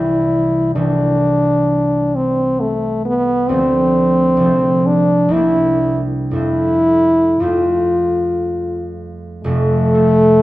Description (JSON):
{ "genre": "classical, romantic duo for French horn and harp", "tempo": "56-67 BPM", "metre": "3/4", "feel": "rubato", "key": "F major from 3.5 s", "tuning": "A4 = 437 Hz", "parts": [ { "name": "clear French horn", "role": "melody", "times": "0.0-10.4 s", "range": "A3 to F4", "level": "-14 LUFS", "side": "left 1 dB", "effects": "none" }, { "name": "concert harp", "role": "accompaniment", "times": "0.0-10.4 s", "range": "F1 to D4", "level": "-18 LUFS", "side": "right 1 dB", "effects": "none" } ], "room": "wet recital hall reverb, RT60 1.5 s", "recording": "none", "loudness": "-13 LUFS", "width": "side -16 dB against mid", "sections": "0.0-9.4 A section", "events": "none", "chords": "0.0 C; 0.8 Am/C; 3.5 Dm7; 4.4 F/C; 5.3 C9; 6.3 F", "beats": "| 0.77 1.69 2.61 | 3.50 4.41 5.33 | 6.33 7.41 8.43 | 9.45" }